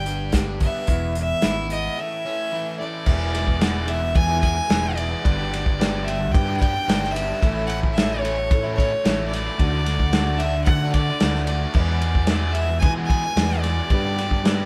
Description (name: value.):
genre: folk rock and heartland rock.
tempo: 111 BPM.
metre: 4/4.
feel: straight.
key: unclear.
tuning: A4 = 440 Hz.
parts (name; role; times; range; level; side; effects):
clear fiddle; melody; 0.0-14.7 s; C#5 to G#5; -28 LUFS; equal; none.
picked plugged-in steel-string acoustic guitar; accompaniment; 0.0-14.7 s; E2 to A4; -35 LUFS; equal; none.
biting overdriven guitar; riff; 0.0-14.7 s; E2 to G#4; -32 LUFS; equal; none.
fingered electric bass; bass; 0.0-14.7 s; E1 to E3; -28 LUFS; equal; none.
loose indie drum kit; drums; 0.1-14.6 s; crash cymbal, hi-hat, kick drum, ride cymbal, snare drum; -25 LUFS; equal; none.
bright concert grand piano; accompaniment; 3.1-14.7 s; E4 to F#5; -40 LUFS; equal; none.
room: light reverb.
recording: band playing live in one room.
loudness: -22 LUFS.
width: mono.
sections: 0.0-3.1 A section; 3.1-14.7 B section.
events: break 2.0-3.1.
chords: 0.0 G; 0.9 E; 2.0 A; 3.1 E; 5.2 G; 7.4 A; 9.6 D; 11.7 E; 13.9 G.